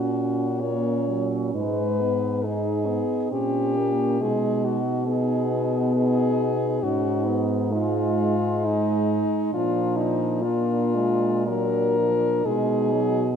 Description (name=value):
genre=classical, lyrical piece for horn quartet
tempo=55-70 BPM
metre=3/4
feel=rubato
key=unclear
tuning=A4 = 445 Hz
part: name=clear French horn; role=melody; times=0.0-13.4 s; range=Eb4 to C#5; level=-26 LUFS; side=left 6 dB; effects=none
part: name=mellow French horn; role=second line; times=0.0-13.4 s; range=C#4 to D#4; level=-29 LUFS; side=right 10 dB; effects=none
part: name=mellow French horn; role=accompaniment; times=0.0-13.3 s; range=F3 to D#4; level=-28 LUFS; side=left 1 dB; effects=none
part: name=mellow French horn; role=bass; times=0.0-13.4 s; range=G#2 to B2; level=-27 LUFS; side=right 2 dB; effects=none
room=moderate scoring stage reverb, RT60 1.8 s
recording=minimal, uncompressed stereo recording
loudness=-21 LUFS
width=side -7 dB against mid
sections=0.0-13.4 A section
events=none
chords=0.0 F#/A#; 1.5 G#m; 3.3 Gdim/Bb; 4.2 G#m/B; 6.8 Abm6; 9.5 Bb; 12.5 B